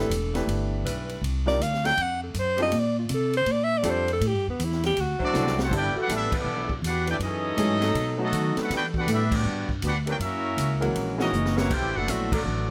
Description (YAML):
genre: jazz, big band swing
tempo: 160 BPM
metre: 4/4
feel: swing 64% on 8ths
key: G major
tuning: A4 = 440 Hz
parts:
  - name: breathy alto saxophone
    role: melody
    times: 0.0-5.7 s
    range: B3 to G5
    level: -28 LUFS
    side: equal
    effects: none
  - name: warm grand piano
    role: accompaniment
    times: 0.0-12.7 s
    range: E3 to B4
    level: -33 LUFS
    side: equal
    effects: none
  - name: upright bass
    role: bass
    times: 0.0-12.7 s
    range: E1 to E3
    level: -30 LUFS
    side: equal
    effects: none
  - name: swinging big-band drum kit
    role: drums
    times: 0.1-12.4 s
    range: crash cymbal, hi-hat, kick drum, ride cymbal, snare drum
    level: -36 LUFS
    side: equal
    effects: none
  - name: mellow saxophone section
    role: sustained chords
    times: 0.9-12.4 s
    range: E3 to C5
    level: -36 LUFS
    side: equal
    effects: none
  - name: clear trumpet section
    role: melody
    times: 5.2-12.7 s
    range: B3 to G5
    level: -31 LUFS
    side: equal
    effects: none
  - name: dark trombone section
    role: second line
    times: 5.2-12.7 s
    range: E3 to G4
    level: -35 LUFS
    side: equal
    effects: none
room: little or no reverb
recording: close, detailed microphones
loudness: -26 LUFS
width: mono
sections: 0.0-5.7 A section; 5.7-12.7 B section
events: alto saxophone solo 0.0-5.7; drum fill 5.3-5.7, 11.3-11.7; band accent 6.3, 9.3, 12.3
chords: 0.0 G6; 1.2 Cm11; 2.0 F; 2.7 Bbmaj13; 4.2 A5; 5.0 D9; 5.7 G69; 7.2 F#m9; 8.0 B7; 8.7 Em11; 10.2 F#7; 11.7 Bm7